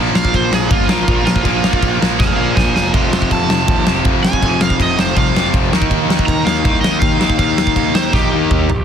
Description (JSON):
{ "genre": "punk rock", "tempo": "162 BPM", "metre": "4/4", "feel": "straight", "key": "unclear", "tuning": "A4 = 442 Hz", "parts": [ { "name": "distorted electric guitar", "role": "riff", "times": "0.0-8.7 s", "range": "F2 to Eb4", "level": "-20 LUFS", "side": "left 16 dB", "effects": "distortion" }, { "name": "distorted electric guitar", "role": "riff", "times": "0.0-8.7 s", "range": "F2 to Eb4", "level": "-20 LUFS", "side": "right 18 dB", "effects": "overdrive" }, { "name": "fuzz picked electric bass", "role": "bass", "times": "0.0-8.8 s", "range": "F1 to Eb2", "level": "-21 LUFS", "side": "equal", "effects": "overdrive" }, { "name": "crunchy overdriven guitar", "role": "melody", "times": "0.2-8.8 s", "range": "F4 to C6", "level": "-20 LUFS", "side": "right 4 dB", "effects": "digital delay" }, { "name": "big rock drum kit", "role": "drums", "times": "0.2-8.8 s", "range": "crash cymbal, kick drum, snare drum, toms", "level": "-16 LUFS", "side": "left 1 dB", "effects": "none" } ], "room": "little or no reverb", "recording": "dense, heavily limited modern master", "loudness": "-12 LUFS", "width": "side -8 dB against mid", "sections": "0.0-8.8 A section", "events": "overdriven electric guitar solo 0.0-8.8; drum fill 2.2-2.9, 8.1-8.8", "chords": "0.0 Bb5; 2.9 F; 5.7 Eb" }